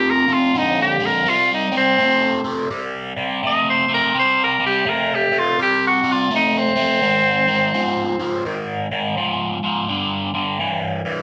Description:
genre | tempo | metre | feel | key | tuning
blues | 84 BPM | 4/4 | swing 63% on 8ths | C minor | A4 = 440 Hz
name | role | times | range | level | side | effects
bright tenor saxophone | melody | 0.0-8.7 s | C4 to Eb5 | -19 LUFS | equal | none
overdriven semi-hollow guitar | riff | 0.0-11.2 s | F2 to A3 | -22 LUFS | equal | phaser
room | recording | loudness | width
wet studio reverb, RT60 0.5 s | band playing live in one room | -19 LUFS | mono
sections
0.0-11.2 A section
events
none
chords
0.0 F5; 1.3 C5; 7.0 Ab; 9.9 G5

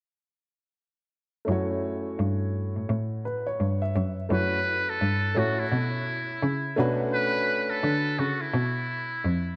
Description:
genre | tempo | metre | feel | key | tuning
hip hop, jazz-hop | 85 BPM | 4/4 | swing 62% on 16ths | unclear | A4 = 441 Hz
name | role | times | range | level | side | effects
warm upright piano | accompaniment | 1.4-7.9 s | A3 to E5 | -32 LUFS | equal | none
muted cello | bass | 1.5-9.6 s | F2 to D3 | -30 LUFS | equal | none
trumpet with metal mute | melody | 4.3-9.6 s | E4 to B4 | -30 LUFS | equal | analog delay
room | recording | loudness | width
wet lush hall reverb, RT60 2.7 s | dreamy mix soaked in reverb | -27 LUFS | mono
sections
1.5-4.3 A section; 4.3-9.6 B section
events
none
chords
1.5 F#m7; 4.0 Esus2/F#; 4.3 F#m7; 6.8 Bm9

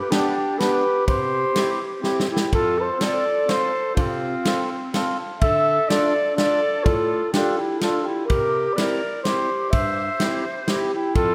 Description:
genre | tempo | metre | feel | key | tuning
alpine folk, alpine dance band | 125 BPM | 3/4 | swing 54% on 8ths | F major | A4 = 441 Hz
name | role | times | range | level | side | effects
mellow flugelhorn | melody | 0.0-11.3 s | F4 to E5 | -25 LUFS | equal | slapback echo
bright reedy bass recorder | second line | 0.0-11.3 s | C4 to C5 | -29 LUFS | equal | none
accordion | accompaniment | 0.1-11.3 s | F2 to A4 | -29 LUFS | equal | none
natural country drum kit | drums | 0.1-11.3 s | kick drum, ride cymbal, snare drum | -27 LUFS | equal | none
room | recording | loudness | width
wet lush hall reverb, RT60 2.1 s | rough home demo mix | -22 LUFS | mono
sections
0.0-2.5 A section; 2.5-11.3 B section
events
drum fill 2.0-2.5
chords
0.0 G; 1.1 C; 2.5 F; 5.4 Dm; 8.3 C7

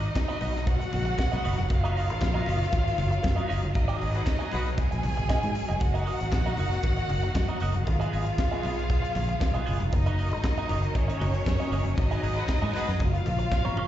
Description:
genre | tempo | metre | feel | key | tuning
disco | 117 BPM | 4/4 | straight | F# major | A4 = 441 Hz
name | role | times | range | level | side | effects
warm studio violin section | second line | 0.0-13.9 s | C#4 to G#5 | -32 LUFS | left 1 dB | plate reverb, slapback echo
clean electric guitar | accompaniment | 0.0-13.9 s | B3 to D#5 | -36 LUFS | right 6 dB | wah, plate reverb, slapback echo
clear studio string section | sustained chords | 0.0-13.9 s | B2 to G#4 | -37 LUFS | equal | plate reverb
fingered electric bass | bass | 0.0-13.9 s | E#1 to G#2 | -27 LUFS | equal | none
tight funk drum kit | drums | 0.0-13.9 s | hi-hat, kick drum, snare drum, toms | -29 LUFS | equal | none
congas | percussion | 0.2-13.6 s | none | -39 LUFS | left 6 dB | none
group handclap | percussion | 0.2-13.6 s | none | -47 LUFS | left 3 dB | none
warm horn section | stabs | 4.2-4.7, 12.4-12.9 s | F#4 to B4 | -36 LUFS | left 2 dB | plate reverb, slapback echo
room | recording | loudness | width
little or no reverb | live gig heard through the venue's PA, recital hall reverb, nothing above 7.8 kHz | -24 LUFS | side -12 dB against mid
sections
0.0-13.9 A section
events
band accent 3.8-5.8, 12.0-13.9; drum fill 13.5-13.9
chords
0.0 G#m7; 1.7 F#6; 3.8 G#m7; 5.8 F#6; 7.9 G#m7; 9.9 F#6; 12.0 G#m7; 13.0 F#maj7

